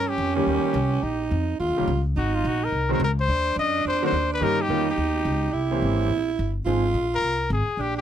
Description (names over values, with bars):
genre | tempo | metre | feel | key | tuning
jazz, small-group swing and bop | 213 BPM | 4/4 | swing 60% on 8ths | Eb mixolydian | A4 = 440 Hz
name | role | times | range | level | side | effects
clear trumpet | melody | 0.0-8.0 s | F4 to Eb5 | -26 LUFS | left 4 dB | none
growling alto saxophone | second line | 0.0-8.0 s | Db4 to F4 | -26 LUFS | right 5 dB | none
upright bass | bass | 0.0-8.0 s | G1 to G2 | -26 LUFS | equal | none
clear grand piano | accompaniment | 0.4-6.8 s | Eb3 to Ab4 | -26 LUFS | equal | none
room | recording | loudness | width
little or no reverb | close, detailed microphones | -21 LUFS | side -10 dB against mid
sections
0.0-8.0 A section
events
none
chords
0.0 Eb7; 1.0 Bb5; 1.6 Eb7; 2.2 Ab7; 3.3 Adim7 (rootless); 4.4 Eb7; 5.5 C7b9; 6.7 Fm7